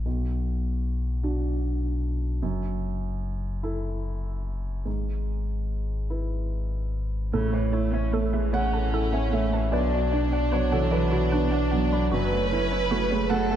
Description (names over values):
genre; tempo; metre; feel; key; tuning
neoclassical piano and strings; 50 BPM (dotted quarters); 6/8; rubato; A major; A4 = 440 Hz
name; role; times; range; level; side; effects
felt-muted upright piano; accompaniment; 0.0-13.6 s; B1 to F#5; -28 LUFS; right 3 dB; none
pure sine sub bass; bass; 0.0-13.6 s; F#1 to B1; -27 LUFS; left 1 dB; none
rich viola; accompaniment; 7.3-13.6 s; C#3 to E4; -33 LUFS; right 2 dB; none
woody wave-folded pluck; arpeggios; 7.3-13.6 s; F#4 to B5; -35 LUFS; right 1 dB; chorus, slapback echo
rich chamber violin section; melody; 8.5-13.6 s; C#4 to B4; -30 LUFS; right 1 dB; none
room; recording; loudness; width
moderate concert hall reverb, RT60 1.8 s; dark, warm production; -24 LUFS; side -10 dB against mid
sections
0.0-7.3 A section; 7.3-13.6 B section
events
none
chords
0.1 Bm; 2.4 F#m7; 4.9 E/G#; 7.3 A; 9.7 Bm; 12.1 F#m7